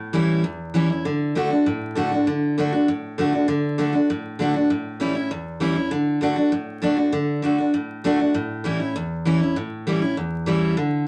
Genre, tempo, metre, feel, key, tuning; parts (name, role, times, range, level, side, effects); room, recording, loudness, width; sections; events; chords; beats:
rock; 198 BPM; 4/4; straight; D major; A4 = 440 Hz
picked steel-string acoustic guitar; solo; 0.0-11.1 s; E2 to F#4; -22 LUFS; equal
moderate club reverb, RT60 0.6 s; vinyl crackle; -22 LUFS; mono
0.0-2.3 A section; 2.3-11.1 B section
0.0 A7; 1.0 D; 4.7 A7; 5.9 D; 8.3 A7
0.14 0.44 0.74 | 1.05 1.35 1.66 1.96 | 2.26 2.57 2.87 3.17 | 3.48 3.78 4.09 4.39 | 4.70 5.00 5.30 5.61 | 5.91 6.21 6.52 6.82 | 7.13 7.43 7.73 8.04 | 8.34 8.64 8.95 9.25 | 9.55 9.86 10.16 10.46 | 10.77